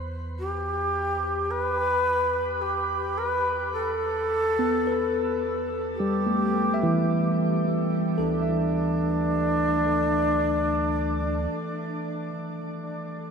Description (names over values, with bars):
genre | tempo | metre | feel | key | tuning
ambient | 54 BPM | 4/4 | straight | unclear | A4 = 442 Hz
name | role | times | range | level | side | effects
warm sub bass | bass | 0.0-11.5 s | D2 to E2 | -36 LUFS | right 1 dB | none
breathy shakuhachi | melody | 0.4-12.3 s | D4 to B4 | -26 LUFS | left 1 dB | shimmer reverb, diffuse ambient delay
bright tine electric piano | arpeggios | 4.6-13.3 s | E3 to E5 | -26 LUFS | right 1 dB | phaser, shimmer reverb, diffuse ambient delay
room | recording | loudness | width
wet cathedral reverb, RT60 6.8 s | in a vast, echoing space | -23 LUFS | side -6 dB against mid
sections
0.0-8.2 A section; 8.2-12.6 B section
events
fade-out on sub bass 0.0-8.2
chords
0.0 Em; 8.2 Dsus2